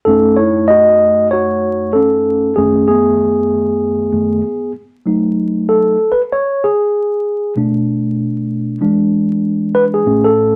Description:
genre	hip hop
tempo	96 BPM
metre	4/4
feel	swing 64% on 16ths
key	F# dorian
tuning	A4 = 439 Hz
part	mellow tine electric piano	solo	0.1-10.6 s	F#2 to D#5	-14 LUFS	equal	none
room	wet studio reverb, RT60 0.7 s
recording	vinyl crackle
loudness	-14 LUFS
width	mono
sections	0.0-5.1 A section; 5.1-10.6 B section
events	tine electric piano solo 0.0-5.1, 5.1-10.6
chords	0.1 F#m69; 7.6 Bm7; 8.8 E7

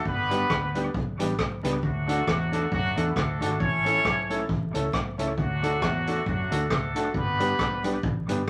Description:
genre	ska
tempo	135 BPM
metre	4/4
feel	swing 58% on 8ths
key	unclear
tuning	A4 = 440 Hz
part	clear horn section	melody	0.0-8.0 s	F#3 to C#5	-30 LUFS	equal	none
part	vintage muted fingered electric bass	bass	0.0-8.5 s	G1 to F#2	-33 LUFS	equal	none
part	swinging big-band drum kit	drums	0.1-8.5 s	hi-hat, kick drum, rim click	-32 LUFS	equal	dub echo
part	mellow electric guitar	accompaniment	0.3-8.4 s	G3 to A4	-37 LUFS	equal	spring reverb
part	clear upright piano	stabs	0.3-8.4 s	C#4 to B4	-33 LUFS	equal	none
room	wet studio reverb, RT60 0.5 s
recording	vinyl crackle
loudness	-26 LUFS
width	mono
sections	0.0-8.5 A section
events	none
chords	0.1 G; 1.8 D; 3.6 A; 5.4 D; 7.1 G

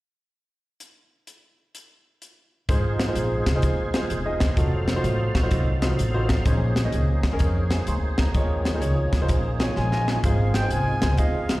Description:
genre	uptempo gospel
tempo	127 BPM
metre	4/4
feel	swing 66% on 8ths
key	Ab major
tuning	A4 = 440 Hz
part	crisp fusion drum kit	drums	0.8-11.6 s	hi-hat, kick drum, snare drum	-24 LUFS	equal	none
part	warm grand piano	accompaniment	2.7-11.5 s	Ab2 to C6	-29 LUFS	equal	none
part	tonewheel organ	sustained chords	2.7-11.6 s	F3 to F5	-31 LUFS	right 2 dB	slow rotary speaker, overdrive, chorus vibrato
part	upright bass	bass	2.7-11.6 s	Fb1 to F2	-24 LUFS	equal	none
part	clean electric guitar	second line	5.0-6.3, 9.6-10.5 s	F3 to Ab4	-35 LUFS	right 4 dB	none
part	breathy bright concert flute	melody	9.8-11.6 s	F5 to Ab5	-28 LUFS	equal	slapback echo
room	light reverb, small room ambience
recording	live gig heard through the venue's PA, recital hall reverb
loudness	-20 LUFS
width	side -18 dB against mid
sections	0.8-2.7 A section; 2.7-10.2 B section; 10.2-11.6 C section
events	drum fill 9.8-10.2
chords	0.8 N.C.; 2.7 Ab6; 4.6 F7b9; 6.5 Bbm11; 8.3 Eb9sus4; 10.2 Ab6

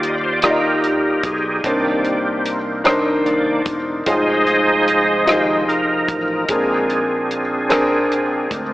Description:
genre	slow gospel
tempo	50 BPM (dotted quarters)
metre	6/8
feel	straight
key	Eb major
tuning	A4 = 440 Hz
part	warm concert grand piano	accompaniment	0.0-8.7 s	Bb2 to Eb5	-19 LUFS	left 1 dB	none
part	bright tonewheel organ	sustained chords	0.0-8.7 s	Eb3 to Eb5	-18 LUFS	right 1 dB	fast rotary speaker, chorus vibrato
part	fingered electric bass	bass	0.0-8.7 s	Fb1 to Eb2	-32 LUFS	equal	none
part	warm soul drum kit	drums	0.0-8.7 s	hi-hat, kick drum, rim click	-23 LUFS	equal	none
room	wet lush hall reverb, RT60 2.8 s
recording	dreamy mix soaked in reverb, AM radio sound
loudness	-15 LUFS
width	side -17 dB against mid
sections	0.0-8.7 A section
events	tonewheel organ solo 0.0-8.7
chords	0.0 Ebmaj9; 1.6 Cm9; 4.1 Fm7; 6.5 Bb9

